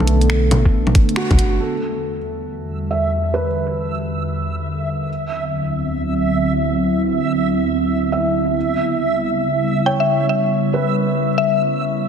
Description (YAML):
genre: future garage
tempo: 138 BPM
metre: 4/4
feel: swing 64% on 16ths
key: E minor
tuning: A4 = 440 Hz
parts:
  - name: felt-muted upright piano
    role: accompaniment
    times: 0.0-5.1, 8.1-12.1 s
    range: F#4 to E5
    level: -25 LUFS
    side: right 2 dB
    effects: sidechain pumping, analog delay
  - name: warbly tape-like pad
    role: sustained chords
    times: 0.0-12.1 s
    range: D2 to E4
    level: -20 LUFS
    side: equal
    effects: chorus, built-in reverb, sidechain pumping
  - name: soft 808-style bass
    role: bass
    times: 0.0-1.6 s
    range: F#1 to D2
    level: -17 LUFS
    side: equal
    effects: sidechain pumping
  - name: garage drum kit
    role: drums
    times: 0.0-1.5 s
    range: bongos, finger snaps, hi-hat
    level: -21 LUFS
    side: left 1 dB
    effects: low-pass filter on hats, studio reverb, soft clipping on snare, low-pass filter on snare, low-pass filter on perc
  - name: electronic kick drum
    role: drums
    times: 0.7-1.4 s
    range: none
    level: -14 LUFS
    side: equal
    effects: studio reverb
  - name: backwards swelling texture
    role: texture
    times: 2.8-12.1 s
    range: E5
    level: -25 LUFS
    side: right 4 dB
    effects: built-in reverb
  - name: mallet-like synth pluck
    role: melody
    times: 9.9-11.8 s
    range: E5 to G5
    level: -19 LUFS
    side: left 3 dB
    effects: chorus, analog delay
room: moderate lush hall reverb, RT60 1.9 s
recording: dense, heavily limited modern master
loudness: -16 LUFS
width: side -7 dB against mid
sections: 0.0-1.6 A section; 1.6-12.1 B section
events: band accent 1.2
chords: 0.0 Bm7; 1.6 Em7; 5.1 D13; 8.6 C#m7b5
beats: 0.30 0.73 1.17 | 1.60 2.04 2.47 2.90 | 3.34 3.77 4.21 4.64 | 5.08 5.51 5.95 6.38 | 6.82 7.25 7.69 8.12 | 8.56 8.99 9.43 9.86 | 10.30 10.73 11.16 11.60 | 12.04